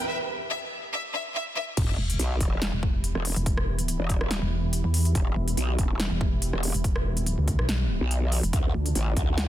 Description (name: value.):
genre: heavy wobble dubstep.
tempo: 142 BPM.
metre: 4/4.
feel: swing 54% on 16ths, half-time.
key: E phrygian.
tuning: A4 = 442 Hz.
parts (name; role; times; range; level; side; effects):
clear studio violin section; melody; 0.0-1.6 s; E5; -30 LUFS; left 1 dB; ping-pong delay.
supersaw pad; sustained chords; 0.0-9.5 s; D3 to B5; -36 LUFS; right 2 dB; sidechain pumping, low-pass filter.
riser and sub drop; sound effects; 0.0-3.5 s; none; -35 LUFS; right 1 dB; none.
warbly tape-like pad; texture; 0.0-0.1, 9.1-9.5 s; F4 to A5; -43 LUFS; right 1 dB; chorus, built-in reverb, phaser, sidechain pumping.
growl bass; bass; 1.8-9.5 s; E1 to D2; -26 LUFS; equal; chorus, overdrive.
big-room dance drum kit; drums; 1.8-9.5 s; crash cymbal, hi-hat, rim click, snare drum; -31 LUFS; equal; none.
electronic kick drum; drums; 1.8-9.3 s; none; -26 LUFS; equal; none.
pulsing pluck wobble bass; bass; 2.0-8.9 s; E1 to E2; -26 LUFS; equal; chorus, overdrive.
room: little or no reverb.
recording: dense, heavily limited modern master.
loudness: -24 LUFS.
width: side -13 dB against mid.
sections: 0.0-1.8 A section; 1.8-9.5 B section.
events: build-up 0.0-1.8; break 0.1-1.8; drop 1.8-9.5; impact 1.8-3.5.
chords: 0.0 Em; 8.5 Dm.